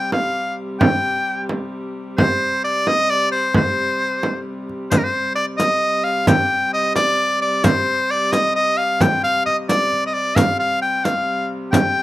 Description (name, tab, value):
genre	medieval dance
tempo	88 BPM (dotted quarters)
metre	6/8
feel	straight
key	C minor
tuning	A4 = 440 Hz
part	edgy shawm	melody	0.0-12.0 s	Bb4 to G5	-18 LUFS	left 1 dB	plate reverb
part	dark hurdy-gurdy	drone	0.0-12.0 s	C3 to G3	-28 LUFS	equal	none
part	frame drum	percussion	0.1-11.9 s	none	-18 LUFS	right 2 dB	none
part	riq	percussion	4.9-11.9 s	none	-24 LUFS	left 2 dB	none
room	moderate studio reverb, RT60 0.5 s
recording	rough home demo mix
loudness	-16 LUFS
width	side -16 dB against mid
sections	0.0-4.9 A section; 4.9-12.0 A section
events	none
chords	none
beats	0.12 | 0.81 1.50 | 2.18 2.87 | 3.55 4.23 | 4.92 5.60 | 6.28 6.96 | 7.65 8.33 | 9.01 9.69 | 10.37 11.05 | 11.73